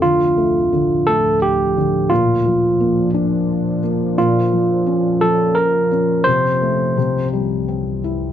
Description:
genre	children's music, lullaby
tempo	86 BPM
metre	3/4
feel	rubato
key	unclear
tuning	A4 = 440 Hz
part	overdriven tine electric piano	melody	0.0-7.3 s	F4 to C5	-16 LUFS	right 2 dB	none
part	felt-muted upright piano	accompaniment	0.0-8.3 s	Bb2 to E4	-20 LUFS	left 4 dB	none
part	deep dark ambient pad	sustained chords	0.0-8.3 s	C2 to D4	-22 LUFS	equal	chorus, built-in reverb
room	light reverb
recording	close, detailed microphones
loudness	-14 LUFS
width	side -10 dB against mid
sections	0.0-8.3 A section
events	none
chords	0.0 Dm; 2.1 Bb; 4.2 Bbm; 6.3 F/C; 7.0 C

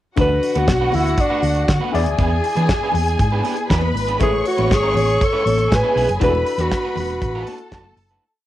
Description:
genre	disco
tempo	119 BPM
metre	4/4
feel	straight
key	unclear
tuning	A4 = 440 Hz
part	breathy alto saxophone	melody	0.2-7.9 s	D4 to B4	-20 LUFS	equal	cassette tape
part	warm studio string section	second line	0.2-8.2 s	F#4 to C#6	-23 LUFS	equal	none
part	electric guitar at the edge of break-up	accompaniment	0.2-8.2 s	G#3 to B4	-30 LUFS	right 8 dB	none
part	warm baby grand piano	accompaniment	0.2-8.2 s	D3 to D5	-28 LUFS	left 7 dB	none
part	hollow-body short-scale fingered electric bass	bass	0.2-8.2 s	E1 to E3	-21 LUFS	equal	none
part	damped 70s drum kit	drums	0.2-8.2 s	hi-hat, kick drum, snare drum	-22 LUFS	equal	none
part	congas	percussion	0.2-8.0 s	none	-31 LUFS	left 9 dB	none
room	light reverb, studio ambience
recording	home recording on cassette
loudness	-16 LUFS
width	side -13 dB against mid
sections	0.2-8.2 pre-chorus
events	fade-out 6.2-8.2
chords	0.2 D6; 1.9 E7; 4.2 Amaj9; 6.2 E9sus4

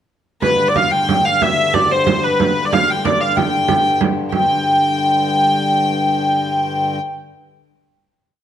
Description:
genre	medieval dance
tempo	124 BPM (dotted quarters)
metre	6/8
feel	straight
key	G mixolydian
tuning	A4 = 440 Hz
part	rich hurdy-gurdy	melody	0.4-7.0 s	B4 to G5	-15 LUFS	equal	none
part	hand-pumped harmonium	drone	0.4-7.0 s	G2 to D3	-23 LUFS	left 2 dB	none
part	frame drum	percussion	0.4-4.5 s	none	-20 LUFS	right 6 dB	none
room	moderate recital hall reverb, RT60 1.4 s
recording	close, detailed microphones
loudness	-14 LUFS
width	side -10 dB against mid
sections	0.4-4.3 A section; 4.3-6.2 final chord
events	speeding up 0.4-6.2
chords	none

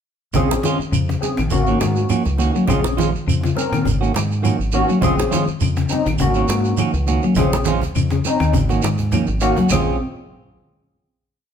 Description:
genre	afrobeat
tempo	102 BPM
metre	4/4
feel	swing 54% on 16ths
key	Bb minor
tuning	A4 = 439 Hz
part	barky tine electric piano	accompaniment	0.3-10.0 s	Bb3 to Bb4	-22 LUFS	left 3 dB	overdrive, phaser
part	clean electric guitar	arpeggios	0.3-9.9 s	Bb2 to Gb3	-22 LUFS	left 5 dB	none
part	semi-hollow electric guitar	stabs	0.3-10.0 s	Eb3 to Gb4	-23 LUFS	right 6 dB	none
part	deep dub fingered electric bass	bass	0.3-10.0 s	Ab1 to Bb2	-22 LUFS	equal	none
part	cajon	drums	0.3-9.9 s	none	-31 LUFS	equal	none
part	claves	percussion	0.3-9.9 s	none	-35 LUFS	left 4 dB	none
part	congas	percussion	0.3-9.9 s	none	-27 LUFS	right 6 dB	none
part	shekere	percussion	0.3-9.8 s	none	-27 LUFS	right 6 dB	none
room	moderate large studio reverb, RT60 1.3 s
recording	band playing live in one room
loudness	-16 LUFS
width	side -8 dB against mid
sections	0.3-9.7 groove; 9.7-11.5 final chord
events	drum fill 8.6-9.7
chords	0.3 Bbm7; 1.5 Ab9sus4; 2.7 Bbm7; 3.9 Ab9sus4; 5.0 Bbm7; 6.2 Ab9sus4; 7.4 Bbm7; 8.6 Ab9sus4; 9.7 Bbm7

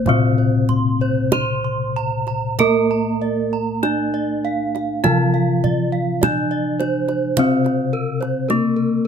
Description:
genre	Javanese gamelan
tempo	48-55 BPM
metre	4/4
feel	straight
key	unclear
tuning	A4 = 440 Hz
part	gamelan-type bronze metallophone	melody	0.0-9.1 s	Bb3-40c to C5	-21 LUFS	equal	none
part	gamelan-type bronze metallophone	accompaniment	0.0-9.1 s	C3 to Bb3-40c	-24 LUFS	left 1 dB	none
part	gamelan-type bronze metallophone	arpeggios	0.0-9.1 s	Bb4-40c to C6	-25 LUFS	right 4 dB	none
part	gamelan-type bossed gongs	bass	0.0-9.1 s	Bb2-40c to Bb4-40c	-22 LUFS	left 2 dB	none
part	kendang	percussion	0.1-8.8 s	none	-22 LUFS	right 5 dB	none
room	light reverb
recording	close, detailed microphones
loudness	-17 LUFS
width	side -7 dB against mid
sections	0.0-9.1 A section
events	none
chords	none

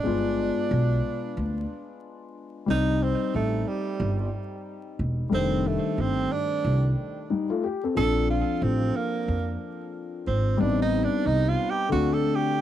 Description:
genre	hip hop, jazz-hop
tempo	91 BPM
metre	4/4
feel	swing 60% on 16ths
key	C dorian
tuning	A4 = 439 Hz
part	breathy tenor saxophone	melody	0.0-12.6 s	G3 to A4	-28 LUFS	right 5 dB	tape echo
part	dark concert grand piano	accompaniment	0.0-12.6 s	D3 to D5	-28 LUFS	left 5 dB	cassette tape
part	upright bass	bass	0.1-12.2 s	E1 to F2	-27 LUFS	equal	tube saturation
room	wet booth ambience, RT60 0.2 s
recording	home recording on cassette, vinyl crackle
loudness	-23 LUFS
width	side -11 dB against mid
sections	0.0-2.7 A section; 2.7-12.6 B section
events	tenor saxophone solo 2.7-12.6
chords	0.0 G7b9; 2.7 Cmadd9; 5.3 F13; 8.0 Bbmaj9; 10.6 Am7b5; 11.9 D5

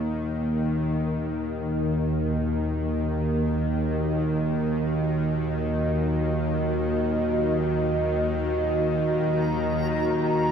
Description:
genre	dark ambient drone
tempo	free time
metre	none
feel	none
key	unclear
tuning	A4 = 440 Hz
part	dark analog pad	sustained chords	0.0-10.5 s	Bb3 to D#5	-27 LUFS	right 1 dB	chorus
part	bowed-like drone	drone	0.0-10.5 s	Eb2 to Eb3	-25 LUFS	equal	built-in reverb
part	backwards swelling texture	texture	9.1-10.5 s	Bb5	-32 LUFS	left 1 dB	built-in reverb
room	wet huge ambient reverb, RT60 7.5 s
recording	none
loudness	-23 LUFS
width	side -7 dB against mid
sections	1.0-10.5 A section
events	none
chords	0.0 Ebm

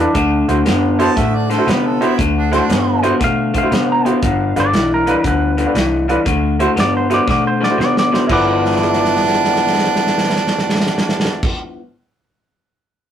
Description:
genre	electric blues shuffle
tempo	118 BPM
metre	4/4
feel	swing 66% on 8ths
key	G mixolydian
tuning	A4 = 440 Hz
part	clean lap steel guitar	melody	0.0-11.5 s	D4 to Bb5	-21 LUFS	right 1 dB	none
part	clear upright piano	accompaniment	0.0-11.5 s	D4 to C5	-20 LUFS	right 2 dB	none
part	electric guitar through a small old amp	riff	0.0-11.8 s	G2 to E4	-17 LUFS	left 3 dB	none
part	vintage muted fingered electric bass	bass	0.0-11.5 s	G1 to C3	-22 LUFS	right 1 dB	none
part	warm soul drum kit	drums	0.1-11.6 s	crash cymbal, hi-hat, kick drum, snare drum	-20 LUFS	right 1 dB	none
part	clear harmonica	second line	1.0-3.0, 8.3-11.5 s	D4 to A5	-19 LUFS	right 6 dB	overdrive
room	light reverb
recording	rough rehearsal-room recording, warm saturation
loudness	-13 LUFS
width	side -9 dB against mid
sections	0.0-8.3 A section; 8.3-12.4 B section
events	drum fill 7.3-8.3, 8.5-11.4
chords	0.1 D7; 4.2 G7; 6.3 D7; 8.3 G13

